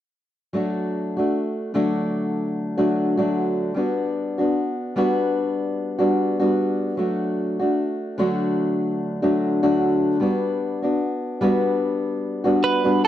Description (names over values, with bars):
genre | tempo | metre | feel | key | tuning
acoustic pop | 74 BPM | 4/4 | swing 55% on 16ths | D major | A4 = 440 Hz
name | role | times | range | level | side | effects
fingerpicked steel-string acoustic guitar | accompaniment | 0.5-13.1 s | D3 to F#4 | -20 LUFS | left 1 dB | none
clean electric guitar | melody | 12.6-13.1 s | B4 | -19 LUFS | right 6 dB | none
room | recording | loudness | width
light reverb | dry, close 1970s-style studio recording | -20 LUFS | side -12 dB against mid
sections
0.5-13.1 A section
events
none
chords
0.5 D; 3.8 Gmaj7; 7.0 D; 10.2 Gmaj7